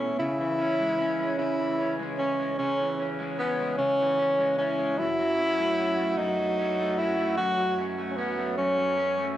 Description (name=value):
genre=six-eight pop ballad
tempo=50 BPM (dotted quarters)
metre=6/8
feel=straight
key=C# minor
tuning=A4 = 440 Hz
part: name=breathy tenor saxophone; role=melody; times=0.0-9.3 s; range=B3 to F#4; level=-26 LUFS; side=equal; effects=cassette tape, tape echo
part: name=electric guitar at the edge of break-up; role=accompaniment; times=0.0-9.4 s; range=F#2 to C#5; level=-31 LUFS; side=equal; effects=double-tracked left and right, cassette tape
part: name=warm French horn section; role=second line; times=0.2-9.4 s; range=C#4 to F#4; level=-34 LUFS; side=right 3 dB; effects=cassette tape, tape echo
room=wet small room reverb, RT60 0.6 s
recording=home recording on cassette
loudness=-24 LUFS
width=side -12 dB against mid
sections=0.2-9.4 A section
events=none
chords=0.2 C#m; 5.0 F#m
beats=| 0.18 1.38 | 2.58 3.78 | 4.98 6.18 | 7.38 8.57